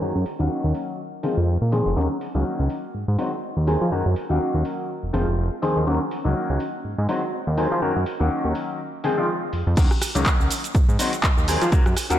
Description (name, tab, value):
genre	filtered disco house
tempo	123 BPM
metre	4/4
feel	swing 56% on 16ths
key	unclear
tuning	A4 = 438 Hz
part	clear concert grand piano	accompaniment	0.0-12.2 s	Eb3 to Ab4	-24 LUFS	left 1 dB	phaser, sidechain pumping, low-pass filter
part	fat analog bass	bass	0.0-12.2 s	F1 to F3	-22 LUFS	equal	sidechain pumping, low-pass filter
part	punchy analog drum machine	drums	0.3-12.2 s	cabasa, crash cymbal, handclaps, hi-hat, rim click	-26 LUFS	right 1 dB	sidechain pumping on hats, low-pass filter on hats, sidechain pumping on cymbals, low-pass filter on cymbals, sidechain pumping on perc, low-pass filter on perc, low-pass filter on snare
part	electronic kick drum	drums	9.8-11.8 s	none	-19 LUFS	equal	none
room	moderate lush hall reverb, RT60 1.9 s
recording	dreamy mix soaked in reverb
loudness	-20 LUFS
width	side -12 dB against mid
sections	0.0-9.8 A section; 9.8-12.2 B section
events	filter sweep 0.0-9.8; drop 9.8-12.2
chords	0.0 Gb6; 1.0 Fm7; 2.0 Ebm7; 2.7 Ab7; 3.9 Gb6; 4.9 Fm7; 5.9 Ebm7; 6.6 Ab7; 7.8 Gb6; 8.8 Fm7; 9.8 Ebm7; 10.5 Ab7